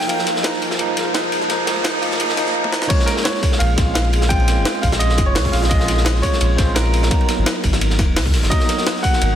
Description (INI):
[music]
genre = liquid drum and bass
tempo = 171 BPM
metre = 4/4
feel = straight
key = Bb minor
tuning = A4 = 440 Hz
[part]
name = bright grand piano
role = melody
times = 0.0-9.4 s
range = Bb4 to G5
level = -24 LUFS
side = right 1 dB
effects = dub echo
[part]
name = tine electric piano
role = accompaniment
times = 0.0-9.4 s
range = F3 to F4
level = -23 LUFS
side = right 1 dB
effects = medium stereo tremolo, ping-pong delay
[part]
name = ethereal airy pad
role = sustained chords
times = 0.0-9.4 s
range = Eb4 to C6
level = -29 LUFS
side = left 1 dB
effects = ensemble chorus, built-in reverb, sidechain pumping
[part]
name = sub bass with octave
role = bass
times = 0.0-9.4 s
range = Eb1 to Db2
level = -18 LUFS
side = equal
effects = none
[part]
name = crunchy breakbeat drum kit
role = drums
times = 0.0-9.3 s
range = hi-hat, ride cymbal, snare drum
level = -25 LUFS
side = right 1 dB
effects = high-pass filter on cymbals, small room ambience, high-pass filter on hats, high-pass filter on snare, high-pass filter on room
[part]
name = riser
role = sound effects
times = 0.0-2.5 s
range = none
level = -27 LUFS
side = equal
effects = none
[part]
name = jungle sampler-style drum kit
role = drums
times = 0.1-9.3 s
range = crash cymbal, hi-hat, snare drum, toms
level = -24 LUFS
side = left 1 dB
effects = small room ambience
[part]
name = electronic kick drum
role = drums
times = 2.9-9.1 s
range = none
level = -19 LUFS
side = equal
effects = small room ambience
[sound]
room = moderate lush hall reverb, RT60 1.9 s, small room ambience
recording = dense, heavily limited modern master, high-pass filter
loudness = -15 LUFS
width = side -10 dB against mid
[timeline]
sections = 0.0-2.9 A section; 2.9-9.4 B section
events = build-up 0.0-2.9; riser 0.0-2.5; filter sweep on tine electric piano 0.0-2.9; drum fill 2.6; drop 2.9-9.4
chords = 0.0 Fm7; 2.9 Bbm7; 7.1 Abm7